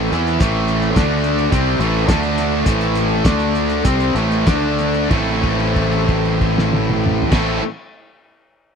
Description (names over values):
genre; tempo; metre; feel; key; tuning
classic rock; 92-109 BPM; 4/4; straight; A minor; A4 = 440 Hz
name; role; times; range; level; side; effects
bright tonewheel organ; sustained chords; 0.0-7.6 s; A3 to D5; -32 LUFS; equal; none
distorted electric guitar; riff; 0.0-7.6 s; A2 to A4; -21 LUFS; right 16 dB; overdrive
overdriven semi-hollow guitar; riff; 0.0-7.6 s; A2 to E4; -23 LUFS; equal; spring reverb
tight distorted guitar; riff; 0.0-7.6 s; A2 to E4; -21 LUFS; left 14 dB; distortion
fuzz fingered electric bass; bass; 0.0-7.6 s; A1 to E2; -21 LUFS; equal; overdrive
cloth-damped thuddy drum kit; drums; 0.1-7.5 s; crash cymbal, hi-hat, kick drum, snare drum, toms; -19 LUFS; equal; none
room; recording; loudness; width
little or no reverb; dry, close 1970s-style studio recording; -15 LUFS; side -6 dB against mid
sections
0.0-5.1 A section; 5.1-7.7 B section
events
slowing down 0.4-5.1; held note 5.1-7.3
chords
0.0 Am; 1.0 D5; 1.5 Am; 2.1 D5; 2.7 Am; 3.2 D5; 3.8 Am; 4.5 D5; 5.1 Am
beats
| 0.40 0.96 1.51 2.08 | 2.66 3.24 3.85 4.46 | 5.10 5.75 6.40 7.05